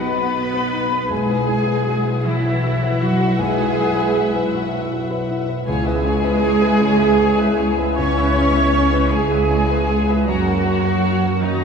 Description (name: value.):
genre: cinematic, emotional film score for orchestra.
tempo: 52 BPM (dotted quarters).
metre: 6/8.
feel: rubato.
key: unclear.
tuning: A4 = 444 Hz.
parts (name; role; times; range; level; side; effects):
muted symphonic violin section; melody; 0.0-11.6 s; E5 to A#5; -31 LUFS; left 4 dB; none.
bright flute section; second line; 0.0-11.6 s; D#5 to C#6; -25 LUFS; left 1 dB; none.
muted symphonic violin section; second line; 0.0-11.6 s; F#4 to E5; -30 LUFS; left 4 dB; none.
felt-muted upright piano; accompaniment; 0.0-11.6 s; B1 to B4; -27 LUFS; left 3 dB; none.
muted symphonic viola section; accompaniment; 0.0-11.6 s; D#4 to C#5; -22 LUFS; right 2 dB; none.
mellow French horn section; sustained chords; 0.0-11.6 s; F#3 to F#4; -27 LUFS; left 2 dB; none.
concert harp; arpeggios; 0.0-11.6 s; F#2 to F#4; -31 LUFS; left 8 dB; none.
muted studio cello section; bass; 0.0-11.6 s; D#3 to C#4; -22 LUFS; right 1 dB; none.
muted symphonic double bass section; bass; 0.0-11.6 s; B1 to F#2; -23 LUFS; right 1 dB; none.
room: wet scoring stage reverb, RT60 2.0 s.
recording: heard from further back in the room.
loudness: -16 LUFS.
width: side -6 dB against mid.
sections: 0.0-11.6 A section.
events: none.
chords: 0.0 B; 1.1 Eadd9/B; 5.7 C#m7; 10.3 F#.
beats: | 1.11 2.26 | 3.39 4.54 | 5.67 6.80 | 7.98 9.12 | 10.28 11.43.